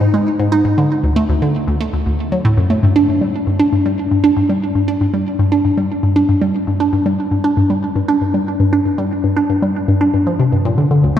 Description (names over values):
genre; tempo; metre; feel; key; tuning
ambient; 117 BPM; 4/4; straight; unclear; A4 = 437 Hz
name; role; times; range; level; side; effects
hollow square pluck; solo; 0.0-11.2 s; D2 to Eb4; -13 LUFS; equal; chorus, tape echo
room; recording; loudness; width
wet cathedral reverb, RT60 5.0 s; dreamy mix soaked in reverb; -13 LUFS; side -10 dB against mid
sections
0.0-2.8 A section; 2.8-11.2 B section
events
none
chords
none